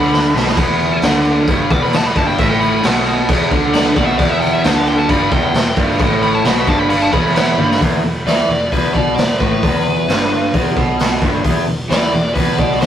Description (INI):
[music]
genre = blues rock power trio and southern rock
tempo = 132 BPM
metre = 4/4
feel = straight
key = E minor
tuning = A4 = 440 Hz
[part]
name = biting lead guitar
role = melody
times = 0.0-12.9 s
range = B4 to D6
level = -21 LUFS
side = left 1 dB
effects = overdrive, digital delay
[part]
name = crunchy overdriven guitar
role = riff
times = 0.0-12.9 s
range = E2 to E3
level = -16 LUFS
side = equal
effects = none
[part]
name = vintage muted picked electric bass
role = bass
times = 0.0-12.9 s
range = E1 to E2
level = -25 LUFS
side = equal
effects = none
[part]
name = raw garage drum kit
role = drums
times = 0.0-12.9 s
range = crash cymbal, hi-hat, kick drum, snare drum, toms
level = -16 LUFS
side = equal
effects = none
[sound]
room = moderate studio reverb, RT60 0.6 s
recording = rough rehearsal-room recording, tube saturation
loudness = -12 LUFS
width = side -10 dB against mid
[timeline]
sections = 0.0-7.8 A section; 7.8-12.9 B section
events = lead electric guitar solo 0.0-7.8; drum fill 0.1-0.6, 7.6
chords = 0.0 Em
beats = 0.12 | 0.57 1.02 1.48 1.93 | 2.38 2.83 3.28 3.74 | 4.19 4.64 5.09 5.54 | 6.00 6.45 6.90 7.35 | 7.81 8.26 8.71 9.17 | 9.62 10.08 10.53 10.99 | 11.44 11.90 12.35 12.81